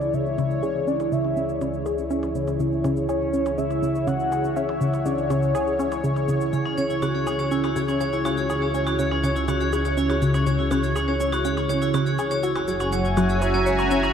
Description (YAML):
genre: ambient, sequencer-driven space music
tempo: 122 BPM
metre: 4/4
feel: straight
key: C# minor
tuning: A4 = 440 Hz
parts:
  - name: soft octave-layered synth lead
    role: melody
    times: 0.0-6.3 s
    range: C#5 to F#5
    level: -29 LUFS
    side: left 2 dB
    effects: chorus, phaser, ping-pong delay
  - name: sweeping resonant pad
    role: sustained chords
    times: 0.0-14.1 s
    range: E4 to A#5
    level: -26 LUFS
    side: equal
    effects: chorus
  - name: tight sequenced synth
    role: riff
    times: 0.0-14.0 s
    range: C#3 to C#5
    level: -25 LUFS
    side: equal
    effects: chorus, ping-pong delay
  - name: analog drone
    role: bass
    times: 0.0-14.1 s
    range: F#1 to C#2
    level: -30 LUFS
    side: equal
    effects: chorus
  - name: cabasa and percussion blips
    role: percussion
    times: 0.0-14.1 s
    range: none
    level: -40 LUFS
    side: right 2 dB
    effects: ping-pong delay
  - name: vibraphone with hard mallets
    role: arpeggios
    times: 6.5-14.1 s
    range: G#3 to C#5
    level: -27 LUFS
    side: right 1 dB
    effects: auto-pan, ping-pong delay
room: wet huge ambient reverb, RT60 8.2 s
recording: dark, warm production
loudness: -21 LUFS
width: side -8 dB against mid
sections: 0.0-14.1 A section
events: fade-in on synth drone 0.0-14.1; fade-in on drum 0.0-14.1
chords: 0.0 C#m; 12.4 F#7